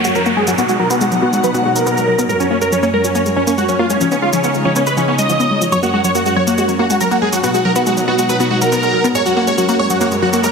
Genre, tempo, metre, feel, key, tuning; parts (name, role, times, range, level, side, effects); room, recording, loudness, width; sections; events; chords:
uplifting trance; 140 BPM; 4/4; straight; F# major; A4 = 441 Hz
big supersaw lead; melody; 0.0-10.5 s; C#4 to D#5; -16 LUFS; right 1 dB; phaser, low-pass filter, tape echo
dark studio string section; sustained chords; 0.0-10.5 s; F#2 to F#5; -20 LUFS; equal
wide unison pluck; arpeggios; 0.0-10.5 s; E#3 to B3; -18 LUFS; left 2 dB; tape echo
shaker; drums; 0.0-10.5 s; -25 LUFS; right 1 dB
downlifter and riser; sound effects; 0.0-2.3, 9.9-10.5 s; -24 LUFS; equal
wet lush hall reverb, RT60 2.3 s; heavily compressed radio sound, multiband compression; -12 LUFS; side -5 dB against mid
0.0-10.5 A section
filter sweep on supersaw synth 0.0-10.5; filter sweep on synth arpeggio sound 0.0-10.5
0.0 F#; 0.6 B; 2.3 F#; 4.0 C#add9; 5.7 F#; 7.4 B; 9.2 F#